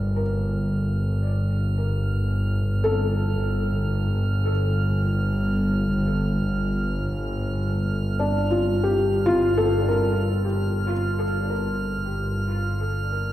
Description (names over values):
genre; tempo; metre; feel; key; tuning
ambient; free time; none; none; G minor; A4 = 440 Hz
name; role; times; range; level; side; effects
felt-muted upright piano; arpeggios; 0.0-13.3 s; D4 to Bb4; -26 LUFS; left 1 dB; dub echo
dark studio double bass section; bass; 0.0-13.3 s; G1; -23 LUFS; equal; none
drifting glass-harmonics texture; texture; 0.0-13.3 s; F6; -34 LUFS; right 4 dB; chorus, built-in reverb
room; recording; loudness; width
moderate plate reverb, RT60 3.4 s; echo-heavy mix; -21 LUFS; side -13 dB against mid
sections
0.0-13.3 A section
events
fade-in on synth texture 0.0-13.3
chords
0.0 Gm7